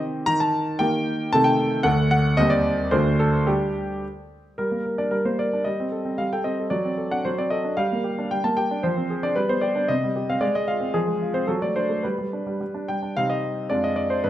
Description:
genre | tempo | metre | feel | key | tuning
classical-period piano sonatina | 112 BPM | 2/4 | rubato | G minor, C minor from 8.8 s | A4 = 440 Hz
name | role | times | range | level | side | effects
clear grand piano | solo | 0.0-14.3 s | D2 to Bb5 | -21 LUFS | equal | none
room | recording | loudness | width
moderate recital hall reverb, RT60 1.7 s | none | -21 LUFS | side -12 dB against mid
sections
0.0-4.6 A section; 4.6-13.2 B section; 13.2-14.3 A section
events
none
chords
0.3 Eb; 1.3 Am7b5/C; 1.9 D; 2.4 Cm/Eb; 2.9 D7; 3.5 G5; 4.6 Gm; 5.7 Am7b5/G; 6.7 D7/F#; 7.8 Gm; 8.8 Dm7b5/F; 9.4 G; 9.9 Cm; 10.4 Fm/Ab; 10.9 Fm; 11.5 D7/F#; 12.0 G; 13.2 Cm; 13.7 Ddim/F

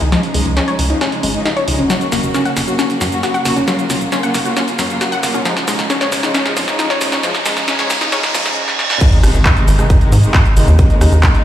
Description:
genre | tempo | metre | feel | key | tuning
uplifting trance | 135 BPM | 4/4 | straight | unclear | A4 = 441 Hz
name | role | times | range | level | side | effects
warm studio string section | sustained chords | 0.0-11.4 s | C3 to Gb4 | -20 LUFS | equal | vintage 12-bit sampler grit, sidechain pumping
wide unison pluck | arpeggios | 0.0-8.4 s | F3 to Gb5 | -19 LUFS | left 2 dB | sidechain pumping, tape echo
tight sequencer bass | bass | 0.0-11.3 s | F1 to Ab2 | -14 LUFS | equal | sidechain pumping
punchy analog drum machine | drums | 0.0-11.4 s | crash cymbal, handclaps, hi-hat, rim click, shaker, snare drum | -19 LUFS | equal | sidechain pumping on hats, high-pass filter on hats, high-pass filter on snare, sidechain pumping on perc, high-pass filter on perc, sidechain pumping on cymbals, high-pass filter on cymbals
riser, reverse cymbal and sub drop | sound effects | 4.1-10.8 s | none | -22 LUFS | right 1 dB | none
electronic kick drum | drums | 9.0-11.3 s | none | -12 LUFS | equal | none
room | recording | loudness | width
moderate huge ambient reverb, RT60 4.3 s | played on a big sound system in a bare room, large studio reverb, high-pass filter | -12 LUFS | side -11 dB against mid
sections
0.0-9.0 A section; 9.0-11.4 B section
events
build-up 0.0-9.0; drum fill 0.0-8.6, 8.7-9.0; filter sweep on synth pluck 0.0-9.0; filter sweep 0.0-9.0; riser 4.1-8.6; reverse cymbal 8.1-9.0; drop 9.0-11.4; impact 9.0-10.8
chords
0.1 Dbadd9; 1.9 Gb; 5.5 Dbadd9/F; 9.0 Ab; 10.8 Eb7sus4

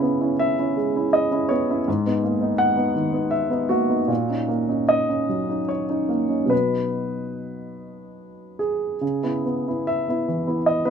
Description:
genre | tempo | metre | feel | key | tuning
neoclassical minimalist piano | 68-84 BPM | 3/4 | rubato | unclear | A4 = 440 Hz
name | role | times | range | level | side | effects
warm grand piano | solo | 0.0-10.9 s | G#2 to F#5 | -20 LUFS | equal | none
room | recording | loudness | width
light reverb | minimal, uncompressed stereo recording | -20 LUFS | side -7 dB against mid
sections
0.0-9.0 A section; 9.0-10.9 A section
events
none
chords
0.0 C#m7; 1.9 G#madd9; 4.1 D#m7/A#; 6.5 B; 9.0 C#m7

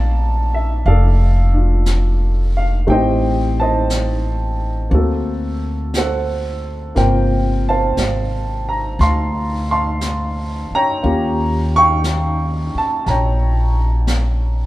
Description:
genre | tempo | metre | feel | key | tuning
jazz ballad | 59 BPM | 4/4 | swing 69% on 8ths | unclear | A4 = 440 Hz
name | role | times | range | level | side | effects
warm baby grand piano | accompaniment | 0.0-14.7 s | C3 to Db6 | -19 LUFS | equal | none
upright bass | bass | 0.0-14.7 s | F1 to Eb2 | -17 LUFS | equal | none
jazz brush drum kit | drums | 0.8-14.7 s | brushed snare drum, hi-hat, snare drum | -29 LUFS | equal | none
room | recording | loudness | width
moderate large studio reverb, RT60 1.3 s | band playing live in one room | -15 LUFS | side -16 dB against mid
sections
0.0-14.7 A section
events
none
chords
0.0 Bbmaj7; 2.9 Am7b5; 4.9 D7b13; 7.0 Gm11; 11.0 Eb9

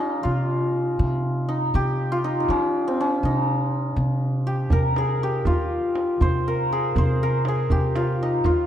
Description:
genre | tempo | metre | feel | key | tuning
Persian modal ensemble | 80 BPM (dotted quarters) | 6/8 | straight | C dastgah shur | A4 = 440 Hz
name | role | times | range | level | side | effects
santur | melody | 0.0-8.7 s | C4 to C5 | -23 LUFS | left 1 dB | none
upright bass | bass | 0.0-8.7 s | C3 to Eb3 | -24 LUFS | equal | none
tombak | percussion | 4.7-8.6 s | none | -25 LUFS | right 1 dB | none
room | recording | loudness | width
light reverb | dark, warm production | -20 LUFS | side -10 dB against mid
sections
0.0-8.7 A section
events
none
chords
none

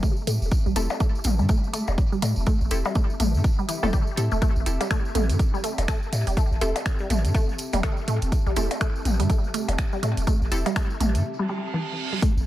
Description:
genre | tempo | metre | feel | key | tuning
minimal techno | 123 BPM | 4/4 | swing 59% on 16ths | A minor | A4 = 440 Hz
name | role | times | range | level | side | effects
resonant blip pluck | riff | 0.0-12.3 s | E3 to A3 | -30 LUFS | right 1 dB | phaser, sidechain pumping, analog delay
electronic kick drum | drums | 0.0-12.3 s | none | -23 LUFS | equal | none
tambourine | percussion | 0.0-12.5 s | none | -38 LUFS | right 1 dB | dub echo
granular cloud pad | texture | 0.0-12.5 s | C4 to A5 | -36 LUFS | equal | built-in reverb, sidechain pumping
punchy sub bass | bass | 0.3-12.4 s | E1 to A2 | -24 LUFS | equal | sidechain pumping
house drum kit | drums | 0.3-12.3 s | finger snaps, hi-hat | -33 LUFS | right 1 dB | dub echo
wavetable chord stab | stabs | 0.8-10.6 s | C4 to A4 | -34 LUFS | left 2 dB | dub echo
electronic percussion blips and toms | percussion | 0.9-11.1 s | none | -31 LUFS | left 3 dB | analog delay
reverse cymbal | sound effects | 11.4-12.2 s | none | -32 LUFS | right 6 dB | none
room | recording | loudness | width
little or no reverb | echo-heavy mix | -21 LUFS | side -14 dB against mid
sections
0.0-12.2 A section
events
fade-in on ambient pad 0.0-12.2; break 11.2-12.2; reverse cymbal 11.4-12.2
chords
0.0 Am7

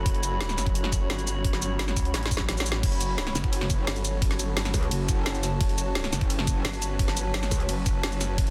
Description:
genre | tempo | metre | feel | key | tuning
dark technical drum and bass | 173 BPM | 4/4 | straight | F# phrygian | A4 = 440 Hz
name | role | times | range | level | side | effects
swarming drone | sustained chords | 0.0-8.5 s | F#3 to C#5 | -38 LUFS | equal | built-in reverb, sidechain pumping
snarling distorted saw bass | bass | 0.0-8.5 s | F#1 to C#2 | -32 LUFS | equal | overdrive, sidechain pumping
warbly tape-like pad | texture | 0.0-8.5 s | F#4 to B5 | -37 LUFS | equal | chorus, built-in reverb, sidechain pumping
drum and bass drum kit | drums | 0.1-8.5 s | crash cymbal, hi-hat, ride cymbal, shaker, snare drum | -33 LUFS | equal | overdrive, studio reverb
electronic kick drum | drums | 0.1-8.5 s | none | -29 LUFS | equal | overdrive, studio reverb
metallic wobble bass | bass | 3.4-7.7 s | F#1 to C#2 | -31 LUFS | equal | distortion, chorus
room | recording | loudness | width
digital ambience | dense, heavily limited modern master | -27 LUFS | mono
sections
0.0-8.5 A section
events
drum fill 2.1-2.8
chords
0.0 F#m

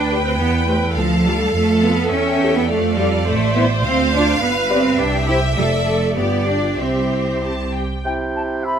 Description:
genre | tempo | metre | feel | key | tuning
quick classical-period movement for symphony orchestra | 103 BPM | 2/4 | rubato | C major | A4 = 440 Hz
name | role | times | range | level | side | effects
rich studio violin section | melody | 0.0-8.0 s | D5 to A5 | -29 LUFS | left 4 dB | none
clear studio violin section | second line | 0.0-7.8 s | C5 to G5 | -25 LUFS | equal | none
clear studio viola section | accompaniment | 0.0-7.8 s | G4 to C5 | -23 LUFS | right 1 dB | none
bright studio cello section | bass | 0.0-7.7 s | F3 to E4 | -20 LUFS | right 3 dB | none
clear studio double bass section | bass | 0.0-7.8 s | F1 to F2 | -22 LUFS | right 2 dB | none
clear French horn section | sustained chords | 0.1-7.8 s | E4 to D5 | -24 LUFS | left 4 dB | none
clear clarinet | second line | 8.0-8.8 s | E4 to G4 | -30 LUFS | left 3 dB | none
warm oboe | second line | 8.0-8.8 s | E5 to G5 | -27 LUFS | right 1 dB | none
silver concert flute | second line | 8.1-8.8 s | G5 to B5 | -24 LUFS | left 2 dB | none
warm bassoon | accompaniment | 8.1-8.8 s | C3 | -24 LUFS | right 5 dB | none
room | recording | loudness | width
light reverb | none | -15 LUFS | side -8 dB against mid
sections
0.0-8.0 A section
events
none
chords
0.4 C/E; 1.0 Dm; 2.1 A7/E; 2.7 Dm/F; 3.3 Am; 3.8 Dm7; 4.4 G; 5.0 C; 5.6 Dm/F; 6.2 G7; 6.8 C

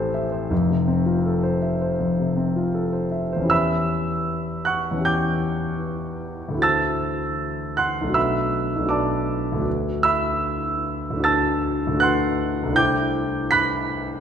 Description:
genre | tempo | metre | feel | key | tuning
classical, impressionist solo piano | 79 BPM | 4/4 | rubato | E minor | A4 = 441 Hz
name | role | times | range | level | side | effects
warm concert grand piano | solo | 0.0-14.2 s | F1 to B6 | -20 LUFS | equal | none
room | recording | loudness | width
moderate concert hall reverb, RT60 2.2 s | minimal, uncompressed stereo recording | -20 LUFS | side -8 dB against mid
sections
0.0-3.5 A section; 3.5-14.2 B section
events
none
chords
0.0 Am7; 0.5 Fmaj7; 3.5 Em6; 6.6 D9; 8.2 Bm7; 9.7 D69; 12.8 C69

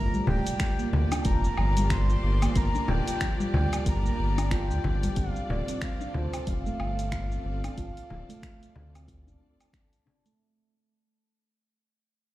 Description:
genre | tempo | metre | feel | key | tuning
organic downtempo | 92 BPM | 4/4 | swing 59% on 16ths | unclear | A4 = 440 Hz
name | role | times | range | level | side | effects
breathy flute-like synth lead | melody | 0.0-9.7 s | C5 to C6 | -35 LUFS | left 1 dB | wide subtle chorus, tape echo
rich symphonic string section | sustained chords | 0.0-10.3 s | Bb3 to D5 | -40 LUFS | equal | sidechain pumping
handpan | arpeggios | 0.0-10.3 s | F3 to F4 | -33 LUFS | right 1 dB | tape echo
round analog bass | bass | 0.0-9.4 s | D1 to D2 | -27 LUFS | equal | sidechain pumping
deep house drum kit | drums | 0.1-10.4 s | finger snaps, hi-hat, shaker, woodblock | -37 LUFS | equal | none
frame drum | percussion | 0.3-10.2 s | none | -32 LUFS | left 2 dB | none
electronic kick drum | drums | 0.6-9.9 s | none | -30 LUFS | equal | none
room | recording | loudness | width
light reverb, digital ambience | played on a big sound system in a bare room, large studio reverb | -25 LUFS | side -16 dB against mid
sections
0.0-10.4 A section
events
fade-out 3.4-10.4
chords
0.0 Gm7; 5.2 Dm7

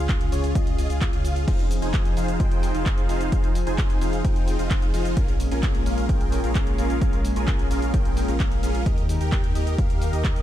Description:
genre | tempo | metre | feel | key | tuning
EDM, festival progressive house | 130 BPM | 4/4 | straight | F minor | A4 = 441 Hz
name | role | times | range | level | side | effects
lush unison pad | sustained chords | 0.0-10.4 s | Db3 to Bb4 | -30 LUFS | left 1 dB | chorus, sidechain pumping
supersaw chords | riff | 0.0-10.4 s | Db4 to Ab5 | -28 LUFS | equal | sidechain pumping, ping-pong delay
saturated sub bass | bass | 0.0-10.4 s | F1 to Eb2 | -26 LUFS | equal | sidechain pumping
big-room dance drum kit | drums | 0.1-10.4 s | crash cymbal, handclaps, hi-hat, shaker | -35 LUFS | equal | none
electronic kick drum | drums | 0.1-10.3 s | none | -23 LUFS | equal | none
room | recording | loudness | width
little or no reverb | dark, warm production | -20 LUFS | side -12 dB against mid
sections
0.0-10.4 A section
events
none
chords
0.0 Db; 1.5 Fm7; 5.2 Bbm7; 8.9 Eb

